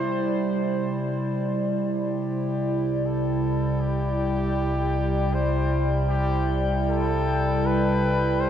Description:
ambient; free time; C major; A4 = 443 Hz
clear flugelhorn; melody; 0.0-8.5 s; G4 to C5; -30 LUFS; left 2 dB; diffuse ambient delay
warbly tape-like pad; sustained chords; 0.0-8.5 s; C3 to D5; -24 LUFS; right 1 dB; chorus, built-in reverb
handpan; arpeggios; 0.0-1.8 s; E4; -36 LUFS; right 2 dB; diffuse ambient delay
drifting glass-harmonics texture; texture; 0.0-8.5 s; G5 to A5; -37 LUFS; left 5 dB; chorus, built-in reverb
deep rumbling drone; bass; 3.0-8.5 s; C2; -30 LUFS; left 1 dB; built-in reverb
wet huge ambient reverb, RT60 8.1 s; worn, warbling old tape, cassette tape, warbly pitch drift; -22 LUFS; side -9 dB against mid
0.0-1.5 A section; 1.5-8.5 B section
fade-in on synth texture 1.5-8.5; fade-in on flugelhorn 1.5-8.5
0.0 Cadd9

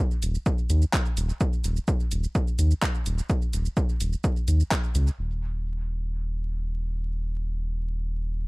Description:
dub techno; 127 BPM; 4/4; straight; A4 = 440 Hz
deep house drum kit; drums; 0.1-5.2 s; handclaps, hi-hat, shaker; -32 LUFS; right 1 dB
round analog bass; bass; 0.2-8.5 s; Eb1 to Eb2; -25 LUFS; equal; sidechain pumping
electronic kick drum; drums; 0.5-4.8 s; -25 LUFS; equal
little or no reverb; vinyl crackle; -24 LUFS; side -26 dB against mid
0.0-5.2 A section; 5.2-8.5 B section

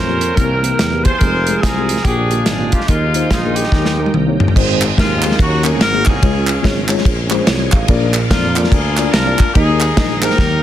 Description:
uptempo gospel; 144 BPM; 4/4; swing 62% on 8ths; A4 = 438 Hz
clear horn section; melody; 0.0-10.6 s; Ab3 to C5; -20 LUFS; left 2 dB
growling tenor saxophone; melody; 0.0-4.1 s; Eb4 to C5; -22 LUFS; right 3 dB
mellow tine electric piano; accompaniment; 0.0-10.6 s; Ab2 to F5; -20 LUFS; left 2 dB; medium stereo tremolo
bright tonewheel organ; sustained chords; 0.0-10.6 s; D3 to Db5; -26 LUFS; right 3 dB; slow rotary speaker, overdrive, chorus vibrato
mellow tuba; bass; 0.0-10.6 s; F1 to F2; -20 LUFS; equal
modern studio drum kit; drums; 0.2-10.5 s; crash cymbal, hi-hat, kick drum, ride cymbal, snare drum, toms; -16 LUFS; equal
group handclap; percussion; 4.8-10.3 s; -22 LUFS; right 4 dB
light reverb, studio reverb; dense, heavily limited modern master; -12 LUFS; side -12 dB against mid
0.0-4.6 A section; 4.6-10.6 B section
drum fill 3.7-4.6, 10.4
0.4 C7; 1.2 Fm; 2.0 Bb7; 2.9 Ebsus4; 3.7 Eb; 4.6 Ab; 5.4 Ebm7; 5.8 Ab9; 6.2 Db; 7.9 Bb; 9.6 Ebsus4

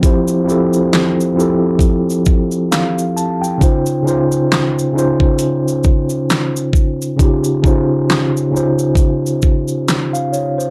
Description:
lo-fi hip hop; 67 BPM; 4/4; swing 56% on 16ths; A4 = 440 Hz
mellow tine electric piano; accompaniment; 0.0-10.7 s; Db3 to A5; -17 LUFS; equal; low-pass filter
dubstep drum kit; drums; 0.0-10.7 s; handclaps, hi-hat, kick drum, shaker, snare drum; -17 LUFS; equal; overdrive
light reverb; dry, gritty hardware recording; -15 LUFS; mono
0.0-10.7 A section
0.0 Fmaj9; 3.6 Dbmaj9

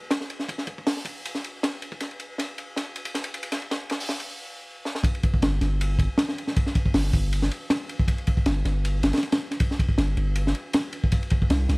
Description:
drum and bass, jungle; 158 BPM; 4/4; swing 53% on 16ths; A4 = 440 Hz
crunchy breakbeat drum kit; drums; 0.1-11.8 s; hi-hat, kick drum, ride cymbal, snare drum; -24 LUFS; equal; high-pass filter on kick, high-pass filter on cymbals, high-pass filter on hats, high-pass filter on snare, high-pass filter on room
long sustained 808-style bass; bass; 5.4-11.8 s; G1 to C2; -23 LUFS; equal
little or no reverb; vinyl crackle; -23 LUFS; side -30 dB against mid
0.0-5.0 A section; 5.0-11.8 B section
build-up 0.0-5.0; drum fill 2.0-4.3, 4.9; stop 4.3-5.0; drop 5.0-11.8

